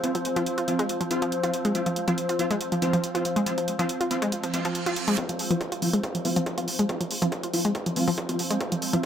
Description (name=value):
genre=driving peak-time techno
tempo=140 BPM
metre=4/4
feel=straight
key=unclear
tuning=A4 = 440 Hz
part: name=rave stab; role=stabs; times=0.0-9.0 s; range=F3 to F4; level=-30 LUFS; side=equal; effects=chorus, built-in reverb, sidechain pumping, tape echo
part: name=swarming drone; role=drone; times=0.0-9.1 s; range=F3 to C4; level=-34 LUFS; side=right 1 dB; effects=built-in reverb, sidechain pumping
part: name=electronic hi-hat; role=drums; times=0.0-9.1 s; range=none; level=-33 LUFS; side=right 1 dB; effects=sidechain pumping on hats
part: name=deep dark ambient pad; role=texture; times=0.0-9.1 s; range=F4 to F5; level=-32 LUFS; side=left 1 dB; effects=chorus, built-in reverb, sidechain pumping
part: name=analog pluck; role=riff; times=0.1-9.0 s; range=F3 to F4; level=-28 LUFS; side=equal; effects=chorus, sidechain pumping, tape echo
part: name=reverse cymbal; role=sound effects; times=4.5-5.2 s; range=none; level=-33 LUFS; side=right 6 dB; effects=none
part: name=electronic kick drum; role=drums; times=5.2-9.1 s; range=none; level=-34 LUFS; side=equal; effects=distortion, high-pass filter on kick, high-pass filter on room
room=moderate plate reverb, RT60 1.1 s, digital ambience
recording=none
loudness=-24 LUFS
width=side -9 dB against mid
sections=0.0-5.2 A section; 5.2-9.1 B section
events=filter sweep on synth stab 0.0-5.2; reverse cymbal 4.5-5.2; build-up 5.2-9.1; filter sweep on synth arpeggio sound 5.2-9.1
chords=0.0 F5